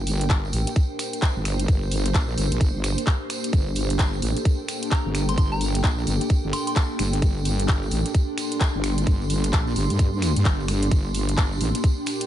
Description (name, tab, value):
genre	bass house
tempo	130 BPM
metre	4/4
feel	swing 61% on 16ths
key	G minor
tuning	A4 = 439 Hz
part	dark analog pad	sustained chords	0.0-12.3 s	Bb3 to Bb4	-33 LUFS	equal	chorus, phaser, sidechain pumping
part	wobble bass	bass	0.0-11.7 s	G1 to G2	-24 LUFS	equal	chorus, tube saturation, sidechain pumping
part	ethereal airy pad	texture	0.0-12.3 s	D4 to C6	-31 LUFS	equal	ensemble chorus, built-in reverb, sidechain pumping
part	garage drum kit	drums	0.1-12.3 s	finger snaps, handclaps, hi-hat	-30 LUFS	left 1 dB	none
part	tambourine	percussion	0.1-12.3 s	none	-35 LUFS	right 4 dB	none
part	electronic kick drum	drums	0.3-12.0 s	none	-20 LUFS	equal	none
part	soft synth bell	melody	4.9-6.7 s	Bb5 to C6	-33 LUFS	equal	chorus, phaser, tape echo
room	digital ambience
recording	nothing above 11.0 kHz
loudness	-20 LUFS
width	side -12 dB against mid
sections	0.0-12.3 A section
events	none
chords	0.0 Gmadd9